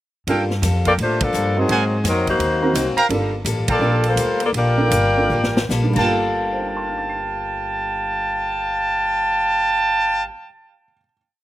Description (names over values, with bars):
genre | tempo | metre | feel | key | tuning
jazz, big band swing | 145-170 BPM | 4/4 | swing 63% on 8ths | G minor | A4 = 444 Hz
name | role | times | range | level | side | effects
picked steel-string acoustic guitar | accompaniment | 0.3-10.4 s | Ab2 to A4 | -28 LUFS | left 3 dB | slapback echo
warm upright piano | accompaniment | 0.3-11.2 s | G2 to C7 | -24 LUFS | right 3 dB | none
clear trumpet section | stabs | 0.3-10.2 s | A4 to Bb5 | -20 LUFS | right 1 dB | slapback echo
upright bass | bass | 0.3-10.3 s | G1 to A2 | -24 LUFS | equal | none
swinging big-band drum kit | drums | 0.3-6.0 s | crash cymbal, hi-hat, kick drum, ride cymbal, snare drum | -27 LUFS | equal | none
mellow saxophone section | melody | 0.9-5.7 s | F3 to G5 | -19 LUFS | left 2 dB | none
room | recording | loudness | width
little or no reverb | recorded outdoors, with no room sound | -17 LUFS | side -14 dB against mid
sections
0.3-6.1 A section; 6.1-9.4 final chord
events
band accent 1.2, 3.6; slowing down 3.1-6.1; drum fill 5.3-5.7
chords
0.3 Gm9; 1.7 Ab9; 3.1 Gm9